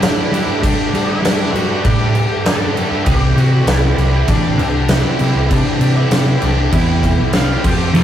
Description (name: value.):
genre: quiet-loud alternative rock.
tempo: 98 BPM.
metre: 4/4.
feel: straight.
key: unclear.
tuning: A4 = 440 Hz.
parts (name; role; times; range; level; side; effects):
octave-fuzz lead guitar; melody; 0.0-8.0 s; D4 to A5; -23 LUFS; left 1 dB; distortion.
cranked stack guitar; riff; 0.0-8.0 s; C3 to G4; -24 LUFS; left 5 dB; overdrive.
tight distorted guitar; riff; 0.0-8.0 s; C3 to G4; -23 LUFS; right 3 dB; distortion.
picked electric bass; bass; 0.0-8.0 s; A1 to G3; -16 LUFS; equal; none.
huge arena drum kit; drums; 0.0-8.0 s; crash cymbal, kick drum, snare drum; -17 LUFS; equal; none.
fuzz guitar; riff; 7.9-8.0 s; F2 to F3; -10 LUFS; equal; distortion.
room: moderate studio reverb, RT60 0.5 s.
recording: rough rehearsal-room recording, warm saturation.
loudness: -12 LUFS.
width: side -10 dB against mid.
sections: 0.0-8.0 A section.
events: none.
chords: 0.0 Gsus2; 3.1 Cadd9.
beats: 0.01 | 0.62 1.23 1.84 2.45 | 3.06 3.67 4.28 4.89 | 5.50 6.12 6.73 7.34 | 7.95.